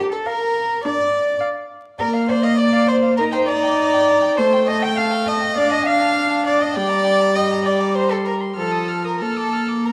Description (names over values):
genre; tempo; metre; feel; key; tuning
quick classical-period movement for string quartet; 101 BPM; 4/4; rubato; Bb major; A4 = 438 Hz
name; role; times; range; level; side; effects
warm violin; second line; 0.0-9.9 s; A4 to G5; -26 LUFS; equal; none
warm viola; accompaniment; 0.0-9.9 s; F3 to Eb4; -23 LUFS; equal; none
rich cello; bass; 0.0-9.9 s; G4 to G5; -22 LUFS; equal; none
dark violin; melody; 0.3-9.9 s; D5 to F6; -31 LUFS; equal; none
room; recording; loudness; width
moderate recital hall reverb, RT60 1.7 s; vinyl crackle; -18 LUFS; mono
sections
0.0-9.9 A section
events
none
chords
0.0 Bb/D; 2.0 Bb; 3.2 Eb; 4.4 Am7b5; 5.6 Dm; 6.8 Gm; 8.0 C5/G; 8.6 F7; 9.2 Bb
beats
0.27 0.85 1.43 | 2.01 2.60 3.19 3.79 | 4.38 4.98 5.58 6.17 | 6.77 7.37 7.97 8.58 | 9.21 9.85